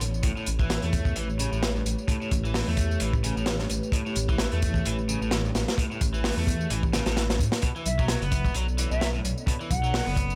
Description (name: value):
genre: breakbeat, breaks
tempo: 130 BPM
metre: 4/4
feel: swing 56% on 16ths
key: unclear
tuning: A4 = 441 Hz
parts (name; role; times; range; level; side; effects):
- dark analog pad; sustained chords; 0.0-10.4 s; A3 to D5; -38 LUFS; equal; chorus, sidechain pumping
- dark detuned saw bass; bass; 0.0-10.4 s; F#1 to A2; -30 LUFS; equal; none
- crunchy breakbeat drum kit; drums; 0.0-10.3 s; hi-hat, kick drum, snare drum; -30 LUFS; equal; none
- tambourine; drums; 0.0-10.4 s; none; -41 LUFS; equal; none
- overdriven semi-hollow guitar; riff; 0.2-10.4 s; G2 to B3; -36 LUFS; equal; vintage 12-bit sampler grit, digital delay
- bright wooden flute; melody; 7.9-10.2 s; E5 to F#5; -36 LUFS; equal; AM radio sound, vintage 12-bit sampler grit, digital delay
room: studio ambience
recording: none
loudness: -26 LUFS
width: mono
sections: 0.0-10.4 A section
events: none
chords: 0.2 A9; 7.6 Bm9